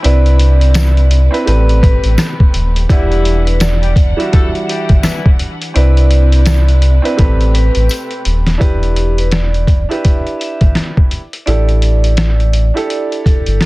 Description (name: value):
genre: hip hop, boom-bap hip-hop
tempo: 84 BPM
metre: 4/4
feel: swing 60% on 16ths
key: E minor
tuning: A4 = 440 Hz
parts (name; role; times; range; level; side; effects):
- vibraphone with hard mallets; melody; 0.0-13.6 s; G4 to E5; -22 LUFS; right 2 dB; high-pass filter, low-pass filter, digital delay
- warm upright piano; accompaniment; 0.0-13.7 s; G3 to F#5; -20 LUFS; right 2 dB; high-pass filter, low-pass filter
- rich symphonic string section; sustained chords; 0.0-8.6 s; C3 to F#5; -28 LUFS; left 1 dB; high-pass filter, low-pass filter
- sub bass with octave; bass; 0.0-13.6 s; D#1 to C2; -10 LUFS; equal; none
- trip hop sampler-style drum kit; drums; 0.0-13.7 s; hi-hat, kick drum, rim click, snare drum; -13 LUFS; equal; none
- tambourine; percussion; 0.8-8.1 s; none; -30 LUFS; left 6 dB; none
- mellow horn section; stabs; 2.9-5.3 s; E3 to A4; -27 LUFS; left 5 dB; high-pass filter, low-pass filter, digital delay
room: little or no reverb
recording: dense, heavily limited modern master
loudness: -10 LUFS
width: side -20 dB against mid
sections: 0.0-8.6 A section; 8.6-13.7 B section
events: drum fill 7.2-8.6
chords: 0.0 Cmaj9; 1.5 Am9; 2.9 Em9; 5.8 Cmaj9; 7.2 Am9; 8.6 Em7; 11.5 A7sus4